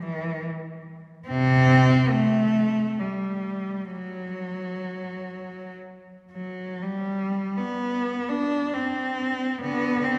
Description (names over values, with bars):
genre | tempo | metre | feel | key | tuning
classical, free, expressive piece for unaccompanied cello | 54-72 BPM | 3/4 | rubato | unclear | A4 = 436 Hz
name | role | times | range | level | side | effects
rich cello | solo | 0.0-10.2 s | C3 to D4 | -26 LUFS | equal | none
room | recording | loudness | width
wet concert hall reverb, RT60 2.4 s | heard from further back in the room, lossy compression artefacts | -25 LUFS | mono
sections
0.0-10.2 A section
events
none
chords
none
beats
0.45 | 1.29 2.13 3.02 | 3.93 4.88 5.79 | 6.83 7.82 8.76 | 9.64